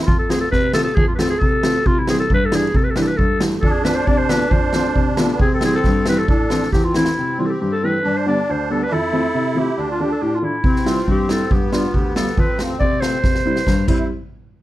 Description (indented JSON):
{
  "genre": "klezmer",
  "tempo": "137 BPM",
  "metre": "2/4",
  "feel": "straight",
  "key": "C major from 7.2 s",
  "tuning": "A4 = 438 Hz",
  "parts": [
    { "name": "musette accordion", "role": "second line", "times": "0.0-0.1, 3.6-14.1 s", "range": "B3 to E4", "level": "-25 LUFS", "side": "right 2 dB", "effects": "none" },
    { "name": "growling clarinet", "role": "melody", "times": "0.1-14.1 s", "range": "E4 to D5", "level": "-21 LUFS", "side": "equal", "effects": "none" },
    { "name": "warm upright piano", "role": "accompaniment", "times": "0.1-14.1 s", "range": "D2 to F4", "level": "-20 LUFS", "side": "left 1 dB", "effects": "none" },
    { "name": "street-band drum kit", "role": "drums", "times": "0.1-7.2, 10.6-14.0 s", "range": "crash cymbal, kick drum, snare drum", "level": "-19 LUFS", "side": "equal", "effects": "none" }
  ],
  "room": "light reverb",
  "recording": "dark, warm production",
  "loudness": "-15 LUFS",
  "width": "side -15 dB against mid",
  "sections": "0.1-7.2 A section; 7.2-14.1 B section",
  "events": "speeding up 0.0-14.6; drum fill 6.7-7.2, 13.2-14.1",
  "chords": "0.1 F; 1.9 C; 3.6 F; 5.4 C; 6.3 Am; 7.2 C; 8.0 G; 8.9 F; 9.8 Dm; 10.6 C; 11.5 G; 12.4 F; 13.2 C; 14.1 N.C."
}